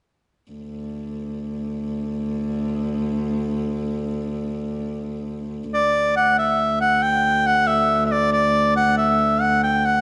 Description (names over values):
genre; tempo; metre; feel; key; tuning
medieval; 92 BPM (dotted quarters); 6/8; straight; D major; A4 = 440 Hz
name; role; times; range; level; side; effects
warm viola da gamba; drone; 0.5-10.0 s; D2; -27 LUFS; equal; none
bright shawm; melody; 5.7-10.0 s; D5 to G5; -19 LUFS; equal; none
room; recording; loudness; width
wet recital hall reverb, RT60 1.7 s; nothing above 10.9 kHz; -21 LUFS; mono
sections
0.5-5.7 A section; 5.7-10.0 B section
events
none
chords
none